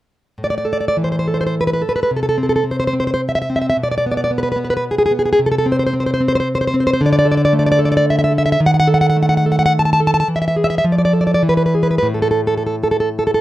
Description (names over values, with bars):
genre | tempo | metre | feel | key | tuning
romantic piece for solo classical guitar | 86-116 BPM | 3/4 | rubato | A minor | A4 = 438 Hz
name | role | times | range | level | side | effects
nylon-string guitar | solo | 0.4-13.4 s | A2 to A5 | -14 LUFS | equal | none
room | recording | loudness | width
light reverb | none | -14 LUFS | side -15 dB against mid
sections
0.4-13.4 A section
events
none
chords
0.4 A5; 2.1 N.C.; 7.0 D5; 8.6 D#dim; 10.3 E; 10.8 F6; 11.4 E; 12.1 N.C.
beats
| 0.37 0.97 1.55 | 2.10 2.64 3.20 | 3.76 4.30 4.84 | 5.38 5.93 6.49 | 7.02 7.54 8.06 | 8.60 9.16 9.72 | 10.27 10.83 11.41 | 12.07 12.75 13.41